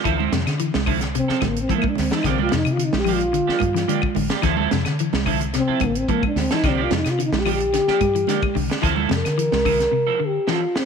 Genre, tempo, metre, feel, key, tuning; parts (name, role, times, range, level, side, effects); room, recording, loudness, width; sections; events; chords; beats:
afrobeat; 109 BPM; 4/4; straight; A4 = 443 Hz
trombone with bucket mute; melody; 0.0-10.9 s; Bb3 to Bb4; -22 LUFS; equal
clean electric guitar; stabs; 0.0-10.8 s; F3 to A4; -27 LUFS; right 11 dB; analog chorus
clean electric guitar; arpeggios; 0.1-10.7 s; C3 to F3; -26 LUFS; left 15 dB; phaser
deep dub fingered electric bass; bass; 0.1-9.9 s; A1 to D3; -26 LUFS; left 1 dB
tight funk drum kit; drums; 0.1-10.9 s; hi-hat, kick drum, snare drum; -26 LUFS; equal
claves; percussion; 0.1-9.8 s; -32 LUFS; left 17 dB
congas; percussion; 0.2-9.8 s; -27 LUFS; right 17 dB
light reverb, studio ambience; 1960s-style stereo with parts hard left and right; -18 LUFS; side -6 dB against mid
0.0-10.9 A section
trombone solo 0.0-10.9; drum fill 10.5-10.9
0.1 Dm9; 2.2 C9sus4; 4.4 Dm9; 6.6 C9sus4; 8.8 Dm9
| 0.05 0.60 1.15 1.70 | 2.25 2.79 3.34 3.89 | 4.44 4.99 5.54 6.08 | 6.63 7.18 7.73 8.28 | 8.83 9.37 9.92 10.47